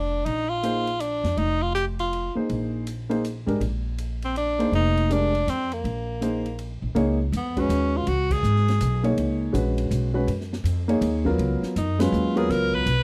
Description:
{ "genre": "modal jazz", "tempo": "162 BPM", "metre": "3/4", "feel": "swing 64% on 8ths", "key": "Bb mixolydian, Db mixolydian from 7.0 s", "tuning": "A4 = 440 Hz", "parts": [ { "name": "bright tenor saxophone", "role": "melody", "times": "0.0-9.1, 11.8-13.0 s", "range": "Bb3 to Cb5", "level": "-28 LUFS", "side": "equal", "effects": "none" }, { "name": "upright bass", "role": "bass", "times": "0.0-13.0 s", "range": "F1 to Gb2", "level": "-28 LUFS", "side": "equal", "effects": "none" }, { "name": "open jazz drum kit", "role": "drums", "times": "0.3-13.0 s", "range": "crash cymbal, hi-hat, kick drum, ride cymbal, snare drum", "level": "-38 LUFS", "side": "equal", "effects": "none" }, { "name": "warm concert grand piano", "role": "accompaniment", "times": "0.6-12.8 s", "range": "Gb3 to Db5", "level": "-27 LUFS", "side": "equal", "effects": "none" } ], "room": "studio reverb", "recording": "dry, close 1970s-style studio recording", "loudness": "-24 LUFS", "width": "mono", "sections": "0.0-7.0 A section; 7.0-13.0 B section", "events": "band accent 8.3, 11.9", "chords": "0.0 Bb9sus4; 7.0 Db9sus4; 11.4 Cbsus2", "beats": "| 0.26 0.64 1.01 | 1.38 1.75 2.12 | 2.50 2.87 3.24 | 3.61 3.98 4.36 | 4.73 5.10 5.47 | 5.84 6.21 6.58 | 6.96 7.33 7.70 | 8.07 8.44 8.80 | 9.17 9.54 9.91 | 10.28 10.65 11.02 | 11.39 11.76 12.13 | 12.50 12.87" }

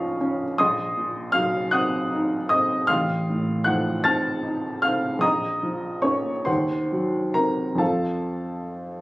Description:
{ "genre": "classical, romantic nocturne for solo piano", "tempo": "44-53 BPM (dotted quarters)", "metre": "12/8", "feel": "rubato", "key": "unclear", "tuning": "A4 = 441 Hz", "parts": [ { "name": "warm upright piano", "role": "solo", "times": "0.0-9.0 s", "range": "A1 to A6", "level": "-21 LUFS", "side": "equal", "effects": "none" } ], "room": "light reverb", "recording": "recorded on a phone in the room, club reverb, compression", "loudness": "-21 LUFS", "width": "side -20 dB against mid", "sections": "0.0-9.0 A section", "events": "none", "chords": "0.0 Bbm; 0.6 Cm7b5/Bb; 2.9 F7/A; 5.2 Bbm; 6.5 Cdim/Eb; 7.8 F", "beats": "| 0.60 1.75 2.89 4.06 | 5.23 6.47 7.80" }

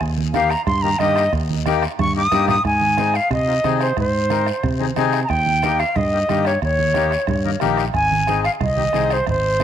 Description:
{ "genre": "latin, cumbia", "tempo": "181 BPM", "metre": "4/4", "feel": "straight", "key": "Ab major", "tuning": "A4 = 440 Hz", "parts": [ { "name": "fingered electric bass", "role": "bass", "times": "0.0-9.6 s", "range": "Ab1 to C3", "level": "-22 LUFS", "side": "equal", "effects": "none" }, { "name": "bombo", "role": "percussion", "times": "0.0-9.6 s", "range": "none", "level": "-28 LUFS", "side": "right 5 dB", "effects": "none" }, { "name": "congas", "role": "percussion", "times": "0.0-9.6 s", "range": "none", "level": "-28 LUFS", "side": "right 8 dB", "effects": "none" }, { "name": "guiro", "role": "percussion", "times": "0.0-9.6 s", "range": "none", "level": "-35 LUFS", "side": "left 13 dB", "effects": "none" }, { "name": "silver concert flute", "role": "melody", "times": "0.3-9.6 s", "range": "C5 to Eb6", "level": "-20 LUFS", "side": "equal", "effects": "none" }, { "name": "accordion", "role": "accompaniment", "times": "0.3-9.6 s", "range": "Bb3 to Bb4", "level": "-24 LUFS", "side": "left 11 dB", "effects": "none" } ], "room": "light reverb, studio reverb", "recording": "1960s-style stereo with parts hard left and right", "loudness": "-16 LUFS", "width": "side -9 dB against mid", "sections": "0.0-2.7 A section; 2.7-9.6 B section", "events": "flute solo 0.0-2.7; drum fill 1.7-2.7", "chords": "0.0 Eb; 2.7 Ab; 5.3 Eb7; 7.9 Ab", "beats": "| 0.01 0.34 0.67 1.00 | 1.33 1.67 2.00 2.33 | 2.66 2.99 3.32 3.65 | 3.98 4.31 4.64 4.97 | 5.30 5.63 5.96 6.29 | 6.62 6.96 7.29 7.62 | 7.95 8.28 8.61 8.94 | 9.27 9.60" }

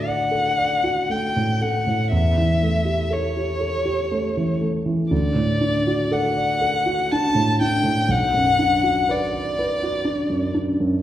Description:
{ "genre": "classical, romantic duo for violin and grand piano", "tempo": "60 BPM", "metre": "3/4", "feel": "rubato", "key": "D major", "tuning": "A4 = 439 Hz", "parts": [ { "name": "warm violin", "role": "melody", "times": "0.0-10.6 s", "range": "C#5 to A5", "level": "-22 LUFS", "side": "left 2 dB", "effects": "none" }, { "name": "dark grand piano", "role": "accompaniment", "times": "0.0-11.0 s", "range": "B1 to D5", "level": "-21 LUFS", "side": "right 1 dB", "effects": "none" } ], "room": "wet recital hall reverb, RT60 1.4 s", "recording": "heard from further back in the room", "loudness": "-18 LUFS", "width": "side -12 dB against mid", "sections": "0.0-11.0 A section", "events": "none", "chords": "0.0 D; 2.1 A7/E; 5.1 D; 8.1 Bm", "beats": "0.06 1.09 | 2.12 3.12 4.11 | 5.11 6.10 7.09 | 8.08 9.08 10.06" }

